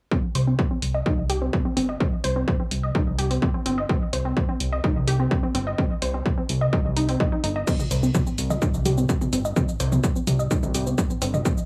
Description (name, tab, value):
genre	melodic techno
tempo	127 BPM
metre	4/4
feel	straight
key	C minor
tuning	A4 = 438 Hz
part	unison pluck	arpeggios	0.1-11.5 s	C4 to Eb5	-30 LUFS	equal	cassette tape, sidechain pumping, tape echo
part	electronic kick drum	drums	0.1-11.6 s	none	-26 LUFS	equal	overdrive
part	fat analog bass	bass	0.4-11.4 s	G1 to C2	-27 LUFS	equal	sidechain pumping
part	punchy analog drum machine	drums	0.4-11.7 s	crash cymbal, hi-hat, shaker, toms	-31 LUFS	equal	none
room	light reverb, digital ambience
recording	dry, gritty hardware recording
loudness	-23 LUFS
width	mono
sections	0.1-7.7 A section; 7.7-11.7 B section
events	filter sweep on analog synth bass 0.1-7.7; filter sweep on synth pluck 0.1-7.7, 7.7-11.7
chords	0.1 C5